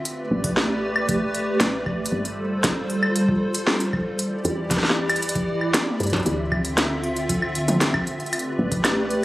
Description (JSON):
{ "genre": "IDM", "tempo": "116 BPM", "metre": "4/4", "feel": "straight", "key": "D dorian", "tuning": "A4 = 443 Hz", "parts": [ { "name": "hollow soft pad", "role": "sustained chords", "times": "0.0-9.2 s", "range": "D3 to E5", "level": "-24 LUFS", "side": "equal", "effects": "ensemble chorus" }, { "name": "industrial drum kit", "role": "drums", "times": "0.1-9.2 s", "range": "claves, hi-hat, snare drum, toms", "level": "-23 LUFS", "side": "equal", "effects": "tape echo" }, { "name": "woody FM bass", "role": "bass", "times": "0.3-9.2 s", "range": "G1 to G2", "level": "-29 LUFS", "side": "equal", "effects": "none" }, { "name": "electronic kick drum", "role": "drums", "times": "0.4-8.8 s", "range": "none", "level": "-26 LUFS", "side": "equal", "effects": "none" } ], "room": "wet lush hall reverb, RT60 1.6 s", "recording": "recorded on a phone in the room, club reverb, lossy compression artefacts", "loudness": "-20 LUFS", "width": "side -17 dB against mid", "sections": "0.0-6.3 A section; 6.3-9.2 B section", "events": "drum fill 5.9-6.3", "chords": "0.1 A9sus4; 2.1 G9sus4; 4.2 Em7; 6.3 Dm9; 8.3 A9sus4", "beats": "| 0.05 0.57 1.09 1.60 | 2.12 2.64 3.16 3.67 | 4.19 4.71 5.22 5.74 | 6.26 6.78 7.29 7.81 | 8.33 8.85" }